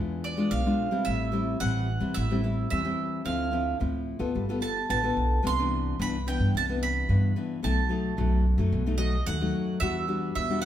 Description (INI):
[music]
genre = samba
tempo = 110 BPM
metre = 4/4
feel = straight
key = E minor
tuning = A4 = 440 Hz
[part]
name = nylon-string guitar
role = accompaniment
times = 0.0-10.7 s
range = F#2 to A4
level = -29 LUFS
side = left 3 dB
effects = none
[part]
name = upright bass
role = bass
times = 0.0-10.7 s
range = G1 to G2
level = -28 LUFS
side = equal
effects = none
[part]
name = mandolin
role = second line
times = 0.2-10.7 s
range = D5 to C6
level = -31 LUFS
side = right 5 dB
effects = none
[sound]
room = wet stone room reverb, RT60 1.1 s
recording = band playing live in one room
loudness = -25 LUFS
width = side -11 dB against mid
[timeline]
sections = 0.0-10.7 A section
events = mandolin solo 0.0-10.7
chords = 0.0 E7b9; 1.1 Am7; 3.3 Dm9; 4.4 G9; 5.5 Cmaj9; 7.6 B7; 9.8 Em9